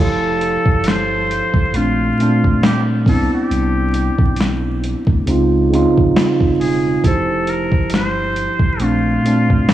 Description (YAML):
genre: lo-fi hip hop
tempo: 68 BPM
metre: 4/4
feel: swing 57% on 16ths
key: F major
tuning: A4 = 438 Hz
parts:
  - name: trumpet with straight mute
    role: melody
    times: 0.0-9.7 s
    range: F4 to C5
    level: -22 LUFS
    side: left 1 dB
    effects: low-pass filter, diffuse ambient delay
  - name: mellow tine electric piano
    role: accompaniment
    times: 0.0-9.7 s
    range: Bb2 to F5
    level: -16 LUFS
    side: right 2 dB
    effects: low-pass filter
  - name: soft dub sub bass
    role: bass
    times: 0.0-9.2 s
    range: E1 to D2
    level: -22 LUFS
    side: equal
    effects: none
  - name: boom bap sampler-style drum kit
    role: drums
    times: 0.4-9.7 s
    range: hi-hat, kick drum, snare drum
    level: -18 LUFS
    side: equal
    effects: vintage 12-bit sampler grit
room: moderate plate reverb, RT60 3.0 s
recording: dreamy mix soaked in reverb, vinyl crackle, studio ambience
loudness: -13 LUFS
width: side -12 dB against mid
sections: 0.0-9.7 A section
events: none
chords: 0.0 Fmaj9; 1.7 Bbmaj9; 3.1 Cmaj9; 5.3 Dbmaj9; 7.0 Fsus2; 8.8 Bbmaj9